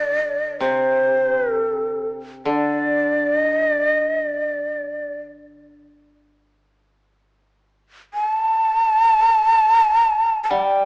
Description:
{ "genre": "japanese traditional", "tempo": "free time", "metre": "none", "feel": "none", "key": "unclear", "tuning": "A4 = 442 Hz", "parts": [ { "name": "breathy shakuhachi", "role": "melody", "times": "0.0-10.9 s", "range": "C5 to A5", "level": "-17 LUFS", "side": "equal", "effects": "none" }, { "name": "koto", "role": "accompaniment", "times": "0.0-10.9 s", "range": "C3 to G3", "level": "-25 LUFS", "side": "left 1 dB", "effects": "none" } ], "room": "moderate scoring stage reverb, RT60 1.8 s", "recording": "small speaker sound, faint mains hum", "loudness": "-16 LUFS", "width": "side -29 dB against mid", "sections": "0.0-10.9 A section", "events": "none", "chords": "none" }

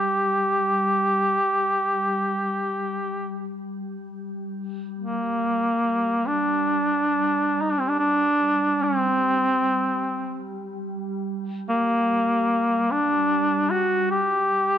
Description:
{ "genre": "caucasian folk, Caucasian lament", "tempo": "free time", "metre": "none", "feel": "none", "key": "G minor", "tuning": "A4 = 439 Hz", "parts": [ { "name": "warm duduk", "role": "melody", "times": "0.0-14.8 s", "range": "Bb3 to G4", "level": "-21 LUFS", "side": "equal", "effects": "none" }, { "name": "glassy FM pad", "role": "drone", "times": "0.0-14.8 s", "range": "G3", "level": "-31 LUFS", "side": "equal", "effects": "ensemble chorus, built-in reverb" } ], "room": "light reverb", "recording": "close, detailed microphones", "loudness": "-21 LUFS", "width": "side -10 dB against mid", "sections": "0.0-4.5 A section; 4.5-14.8 B section", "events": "none", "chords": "none" }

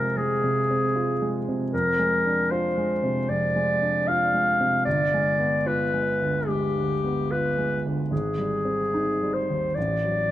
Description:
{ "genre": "classical, romantic duo for clarinet and grand piano", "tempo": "71-79 BPM", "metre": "4/4", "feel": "rubato", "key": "unclear", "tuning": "A4 = 440 Hz", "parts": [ { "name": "warm clarinet", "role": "melody", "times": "0.0-10.3 s", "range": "G4 to F5", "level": "-24 LUFS", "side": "left 1 dB", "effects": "none" }, { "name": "clear grand piano", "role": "accompaniment", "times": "0.0-10.3 s", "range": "G1 to F4", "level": "-26 LUFS", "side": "right 1 dB", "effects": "none" } ], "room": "moderate concert hall reverb, RT60 2.1 s", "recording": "close, detailed microphones", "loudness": "-22 LUFS", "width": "side -13 dB against mid", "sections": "0.0-10.3 A section", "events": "none", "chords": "0.0 Fm; 1.7 Dm7b5/F; 4.9 G7b9; 8.1 Abmaj7; 9.8 D/A" }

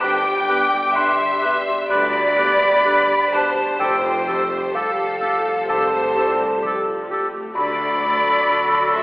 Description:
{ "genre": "cinematic", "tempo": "64 BPM", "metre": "4/4", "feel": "rubato", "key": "unclear", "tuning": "A4 = 440 Hz", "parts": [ { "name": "rich studio violin section", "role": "melody", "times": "0.0-9.0 s", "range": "A4 to G5", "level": "-26 LUFS", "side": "left 1 dB", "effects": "none" }, { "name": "clear clarinet", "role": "second line", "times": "0.0-9.0 s", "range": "F#4 to G4", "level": "-28 LUFS", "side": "equal", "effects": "none" }, { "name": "rich studio violin section", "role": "second line", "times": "0.0-9.0 s", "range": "A4 to G5", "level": "-25 LUFS", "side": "equal", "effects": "none" }, { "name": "silver concert flute", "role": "second line", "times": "0.0-9.0 s", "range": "F5 to D6", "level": "-20 LUFS", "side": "equal", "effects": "none" }, { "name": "warm oboe", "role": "second line", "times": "0.0-9.0 s", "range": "A4 to B4", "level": "-24 LUFS", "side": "equal", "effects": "none" }, { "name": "felt-muted upright piano", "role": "accompaniment", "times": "0.0-9.0 s", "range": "F1 to D6", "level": "-30 LUFS", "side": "equal", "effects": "none" }, { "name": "warm symphonic viola section", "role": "accompaniment", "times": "0.0-9.0 s", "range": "C3 to G4", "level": "-30 LUFS", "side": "equal", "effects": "none" }, { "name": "mellow French horn section", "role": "sustained chords", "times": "0.0-9.0 s", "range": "F#3 to D5", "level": "-25 LUFS", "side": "equal", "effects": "none" }, { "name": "rich studio double bass section", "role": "bass", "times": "0.0-8.3 s", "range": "F1 to D2", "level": "-38 LUFS", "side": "right 1 dB", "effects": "none" }, { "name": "warm studio cello section", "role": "bass", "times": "0.0-8.3 s", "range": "C2 to G2", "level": "-33 LUFS", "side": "equal", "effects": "none" } ], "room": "wet concert hall reverb, RT60 1.9 s", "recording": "recorded in a church or concert hall, telephone sound", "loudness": "-16 LUFS", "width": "side -20 dB against mid", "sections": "0.0-9.0 A section", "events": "none", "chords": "0.0 G; 3.8 Fadd9; 7.6 D" }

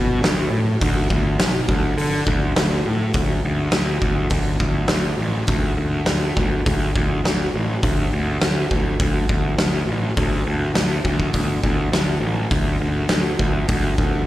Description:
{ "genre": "garage rock duo or trio", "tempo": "102 BPM", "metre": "4/4", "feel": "straight", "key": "unclear", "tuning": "A4 = 440 Hz", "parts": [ { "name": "fuzz picked electric bass", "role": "bass", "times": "0.0-14.2 s", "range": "A1 to D3", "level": "-21 LUFS", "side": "equal", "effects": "overdrive" }, { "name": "oversized low-tuned drum kit", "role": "drums", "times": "0.2-14.1 s", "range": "hi-hat, kick drum, snare drum", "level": "-21 LUFS", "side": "equal", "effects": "none" } ], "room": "little or no reverb", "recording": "live gig heard through the venue's PA, club reverb", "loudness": "-18 LUFS", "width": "side -15 dB against mid", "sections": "0.0-3.2 A section; 3.2-14.3 B section", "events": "none", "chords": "none" }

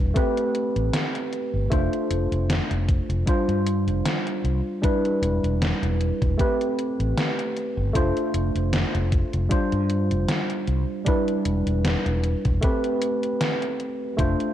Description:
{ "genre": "vaporwave", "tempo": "77 BPM", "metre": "4/4", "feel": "swing 55% on 16ths", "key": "A minor", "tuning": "A4 = 438 Hz", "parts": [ { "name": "tine electric piano", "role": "accompaniment", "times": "0.0-14.5 s", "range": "G3 to C5", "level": "-25 LUFS", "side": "equal", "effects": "overdrive, wide subtle chorus, tape echo" }, { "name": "mellow fretless electric bass", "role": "bass", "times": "0.0-14.3 s", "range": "E1 to G2", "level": "-24 LUFS", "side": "equal", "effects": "none" }, { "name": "electronic kick drum", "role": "drums", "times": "0.2-14.4 s", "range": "none", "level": "-23 LUFS", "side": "equal", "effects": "overdrive" }, { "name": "gated 80s digital drum machine", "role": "drums", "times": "0.2-14.5 s", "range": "cabasa, hi-hat, snare drum", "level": "-28 LUFS", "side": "equal", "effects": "gated reverb, gated reverb snare, overdrive" } ], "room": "little or no reverb", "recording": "cassette tape", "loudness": "-21 LUFS", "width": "side -11 dB against mid", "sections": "0.0-14.5 A section", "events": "break 13.4-14.2", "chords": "0.2 Am9; 1.7 F6; 3.3 G7sus4; 4.8 Em7; 6.4 Am9; 8.0 F6; 9.5 G7sus4; 11.1 Em7; 12.6 Am9" }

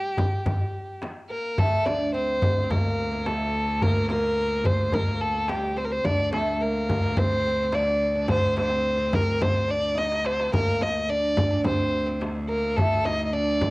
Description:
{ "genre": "Arabic maqam ensemble", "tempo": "107 BPM", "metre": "4/4", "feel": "straight", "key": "D maqam hijaz", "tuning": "A4 = 436 Hz", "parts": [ { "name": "dark violin", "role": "melody", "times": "0.0-13.7 s", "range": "G4 to Eb5+28c", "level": "-25 LUFS", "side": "equal", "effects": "cassette tape" }, { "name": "oud", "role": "second line", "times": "0.0-13.7 s", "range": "G3 to Eb4+25c", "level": "-31 LUFS", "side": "right 2 dB", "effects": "cassette tape" }, { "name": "darbuka", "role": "percussion", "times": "0.0-13.7 s", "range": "none", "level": "-28 LUFS", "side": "equal", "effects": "none" }, { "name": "frame drum", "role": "percussion", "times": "0.2-13.7 s", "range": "none", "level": "-29 LUFS", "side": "equal", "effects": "none" }, { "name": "bright cello", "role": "drone", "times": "1.6-13.7 s", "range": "D2", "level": "-30 LUFS", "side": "equal", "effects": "cassette tape" } ], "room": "small room ambience", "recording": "home recording on cassette", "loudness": "-22 LUFS", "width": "side -22 dB against mid", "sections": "0.0-1.6 A section; 1.6-13.7 B section", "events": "drum fill 10.0-10.5", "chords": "none" }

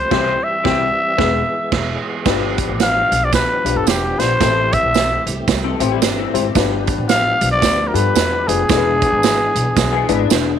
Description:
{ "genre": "uptempo 1960s-style soul", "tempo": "112 BPM", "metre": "4/4", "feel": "swing 60% on 8ths", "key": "unclear", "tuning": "A4 = 442 Hz", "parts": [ { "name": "growling trumpet", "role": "melody", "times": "0.0-10.3 s", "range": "G4 to F5", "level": "-17 LUFS", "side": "left 1 dB", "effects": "none" }, { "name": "tonewheel organ", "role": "sustained chords", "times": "0.0-10.6 s", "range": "E3 to G#4", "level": "-26 LUFS", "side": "left 1 dB", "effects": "slow rotary speaker, overdrive, chorus vibrato" }, { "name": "upright bass", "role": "bass", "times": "0.0-10.6 s", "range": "E1 to G2", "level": "-22 LUFS", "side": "equal", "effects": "none" }, { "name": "dark upright piano", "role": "accompaniment", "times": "0.1-10.3 s", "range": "B3 to C5", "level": "-22 LUFS", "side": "left 12 dB", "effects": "none" }, { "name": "electric guitar through a small old amp", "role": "riff", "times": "0.1-0.9, 5.6-6.5, 9.9-10.6 s", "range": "E3 to A4", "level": "-24 LUFS", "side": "left 12 dB", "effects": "analog chorus" }, { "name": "vintage drum kit", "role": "drums", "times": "0.1-10.5 s", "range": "crash cymbal, hi-hat, kick drum, snare drum", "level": "-20 LUFS", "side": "right 6 dB", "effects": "none" }, { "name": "tambourine", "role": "percussion", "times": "2.3-10.5 s", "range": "none", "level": "-29 LUFS", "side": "right 14 dB", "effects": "none" } ], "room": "light reverb, small room ambience", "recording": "1960s-style stereo with parts hard left and right", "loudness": "-14 LUFS", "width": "side -9 dB against mid", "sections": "0.0-2.3 A section; 2.3-10.6 B section", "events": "band accent 0.1-2.3", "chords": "0.1 C; 1.2 E; 2.3 G7; 4.4 Am7; 6.5 G7; 8.7 E7" }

